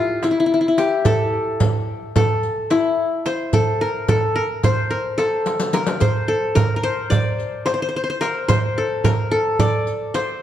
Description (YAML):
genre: Turkish makam ensemble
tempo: 218 BPM (eighths)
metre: 9/8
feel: straight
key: A makam kurdi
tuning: A4 = 441 Hz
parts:
  - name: qanun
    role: melody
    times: 0.0-10.4 s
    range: E4 to D5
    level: -19 LUFS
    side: left 2 dB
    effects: tape echo
  - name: darbuka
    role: percussion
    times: 0.2-10.3 s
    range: none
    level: -21 LUFS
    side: right 3 dB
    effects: none
  - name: riq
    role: percussion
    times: 0.2-10.3 s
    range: none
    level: -28 LUFS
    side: left 5 dB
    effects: none
room: moderate scoring stage reverb, RT60 1.5 s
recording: dark, warm production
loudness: -17 LUFS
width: side -11 dB against mid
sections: 0.0-10.4 A section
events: drum fill 5.5-6.0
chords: none